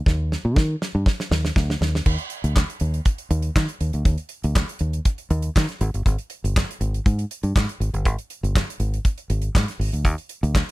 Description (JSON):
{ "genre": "disco", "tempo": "120 BPM", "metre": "4/4", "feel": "straight", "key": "unclear", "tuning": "A4 = 440 Hz", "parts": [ { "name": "fingered electric bass", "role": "bass", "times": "0.1-10.6 s", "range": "G1 to Eb3", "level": "-22 LUFS", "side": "equal", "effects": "none" }, { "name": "damped 70s drum kit", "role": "drums", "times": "0.1-10.7 s", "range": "crash cymbal, handclaps, hi-hat, kick drum, snare drum", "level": "-22 LUFS", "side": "equal", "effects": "none" } ], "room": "little or no reverb", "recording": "none", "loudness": "-20 LUFS", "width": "side -19 dB against mid", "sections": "0.0-2.1 A section; 2.1-10.7 B section", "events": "drum fill 0.1-2.1", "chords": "none", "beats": "| 0.07 0.57 1.07 1.56 | 2.06 2.56 3.06 3.56 | 4.06 4.56 5.06 5.56 | 6.05 6.55 7.05 7.55 | 8.05 8.55 9.05 9.55 | 10.05 10.54" }